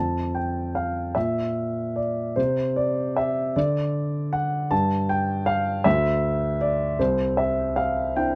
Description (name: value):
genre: classical, lyrical solo piano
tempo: 49-53 BPM (dotted quarters)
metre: 6/8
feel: rubato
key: unclear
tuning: A4 = 439 Hz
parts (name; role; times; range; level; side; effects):
- dark baby grand piano; solo; 0.0-8.4 s; C2 to A5; -24 LUFS; equal; none
room: light reverb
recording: dark, warm production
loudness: -24 LUFS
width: mono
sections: 0.0-8.4 A section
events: none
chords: 0.0 N.C.; 7.0 Cadd9